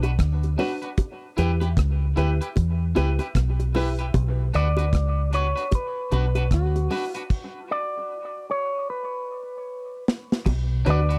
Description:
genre	dub reggae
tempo	76 BPM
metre	4/4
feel	swing 60% on 16ths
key	B minor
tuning	A4 = 444 Hz
part	electric guitar with an envelope filter	melody	0.0-11.2 s	F#4 to D5	-30 LUFS	equal	dub echo
part	twangy electric guitar	accompaniment	0.0-11.2 s	D4 to B4	-36 LUFS	equal	dub echo
part	deep dub fingered electric bass	bass	0.0-11.2 s	B1 to E2	-24 LUFS	equal	none
part	deep reggae drum kit	drums	0.0-11.2 s	crash cymbal, hi-hat, kick drum, rim click, snare drum	-25 LUFS	equal	none
part	bongos	percussion	0.0-10.7 s	none	-35 LUFS	equal	dub echo
part	warm upright piano	stabs	0.6-3.9, 10.9-11.0 s	D4 to B4	-33 LUFS	equal	dub echo
part	clean electric guitar	riff	10.5-11.1 s	B2 to D3	-34 LUFS	equal	none
room	small room ambience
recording	dry, close 1970s-style studio recording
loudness	-24 LUFS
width	mono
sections	0.0-10.5 A section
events	stop 7.3-10.5; drum fill 8.9-10.5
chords	0.0 Bm; 1.0 Em; 4.1 Bm; 7.3 N.C.; 10.5 Bm

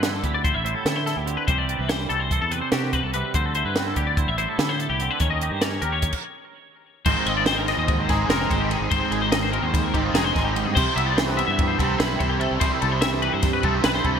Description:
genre	math rock and midwest emo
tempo	291 BPM (eighths)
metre	9/8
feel	straight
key	unclear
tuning	A4 = 440 Hz
part	twangy electric guitar	accompaniment	0.0-14.2 s	G2 to A4	-29 LUFS	right 10 dB	analog chorus
part	twangy electric guitar	arpeggios	0.0-14.2 s	F4 to E5	-25 LUFS	left 7 dB	analog chorus, ping-pong delay
part	fingered electric bass	bass	0.0-14.2 s	F1 to D3	-28 LUFS	equal	none
part	compact cocktail drum kit	drums	0.0-14.1 s	crash cymbal, hi-hat, kick drum, ride cymbal, snare drum	-25 LUFS	equal	gated reverb
part	raw garage guitar	riff	7.1-14.2 s	Ab2 to E4	-25 LUFS	right 1 dB	overdrive, ensemble chorus
room	moderate lush hall reverb, RT60 1.9 s, small room ambience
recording	bright 1980s-style digital production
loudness	-20 LUFS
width	side -7 dB against mid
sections	0.0-7.1 A section; 7.1-14.2 B section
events	stop 6.1-7.1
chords	0.0 D9sus4; 1.5 Am7/C; 3.3 D9sus4; 5.2 Eb7; 7.1 Ab6; 10.8 Cmaj7

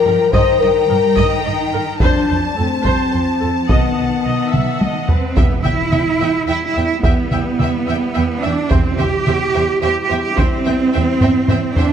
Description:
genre	cinematic, epic orchestral film score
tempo	108 BPM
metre	3/4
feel	straight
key	E minor from 5.4 s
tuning	A4 = 439 Hz
part	clear symphonic violin section	melody	0.0-11.9 s	G5 to Bb5	-29 LUFS	left 3 dB	none
part	rich studio violin section	second line	0.0-11.9 s	E5 to A5	-26 LUFS	left 4 dB	none
part	mellow French horn section	sustained chords	0.0-11.9 s	G3 to C5	-20 LUFS	left 5 dB	none
part	rich symphonic cello section	bass	0.0-11.9 s	Eb3 to G4	-19 LUFS	right 3 dB	none
part	rich symphonic viola section	accompaniment	0.1-11.8 s	A4 to E5	-25 LUFS	right 1 dB	none
part	rich symphonic double bass section	bass	0.1-11.9 s	B1 to G2	-22 LUFS	right 4 dB	none
part	solo taiko drums	drums	0.3-11.9 s	none	-18 LUFS	equal	none
part	timpani	percussion	5.4-6.2, 8.7-9.5 s	E2	-27 LUFS	right 1 dB	none
part	impact	sound effects	5.4-7.0 s	none	-29 LUFS	equal	none
room	moderate scoring stage reverb, RT60 1.9 s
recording	none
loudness	-14 LUFS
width	side -8 dB against mid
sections	0.0-5.4 A section; 5.4-11.9 B section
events	drum fill 4.5-5.4, 11.2-11.9; impact 5.4-7.0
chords	0.3 Eb/G; 2.0 F; 3.7 B7; 5.4 Em; 8.7 C/E

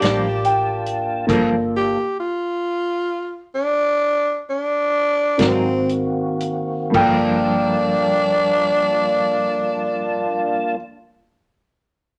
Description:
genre	slow blues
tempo	37-48 BPM (dotted quarters)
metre	12/8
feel	straight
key	G minor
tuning	A4 = 439 Hz
part	growling tenor saxophone	melody	0.0-10.8 s	C4 to G4	-22 LUFS	equal	none
part	clear upright piano	second line	0.0-10.8 s	Bb4 to G5	-25 LUFS	equal	none
part	dark concert grand piano	accompaniment	0.0-10.8 s	Bb3 to Bb4	-26 LUFS	equal	none
part	semi-hollow electric guitar	accompaniment	0.0-10.9 s	G2 to Eb4	-28 LUFS	equal	tremolo
part	tonewheel organ	sustained chords	0.0-10.8 s	Eb3 to A5	-27 LUFS	equal	overdrive, chorus vibrato, slow rotary speaker
part	vintage muted fingered electric bass	bass	0.0-10.8 s	G1 to Ab2	-32 LUFS	equal	none
part	warm soul drum kit	drums	0.0-7.2 s	crash cymbal, hi-hat, kick drum, snare drum	-28 LUFS	equal	none
room	moderate studio reverb, RT60 0.8 s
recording	none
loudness	-20 LUFS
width	mono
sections	0.0-6.9 A section; 6.9-12.2 B section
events	slowing down 0.0-6.9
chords	0.0 Gm7; 5.4 Ab7; 6.9 Gm7

